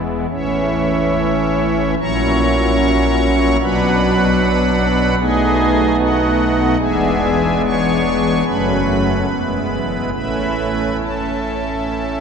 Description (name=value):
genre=classical, chorale-style piece for pipe organ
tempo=73 BPM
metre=4/4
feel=uneven beats, rubato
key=A major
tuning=A4 = 442 Hz
part: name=pipe organ, strings celeste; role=solo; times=0.0-12.2 s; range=E1 to C#6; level=-14 LUFS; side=equal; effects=none
room=wet cathedral reverb, RT60 4.9 s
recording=heard from further back in the room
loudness=-14 LUFS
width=side -6 dB against mid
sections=0.0-12.2 A section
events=none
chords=0.3 A; 2.0 F#7/A#; 3.6 Bm; 5.2 B7; 6.8 E7; 8.5 F#m; 9.3 E; 10.1 A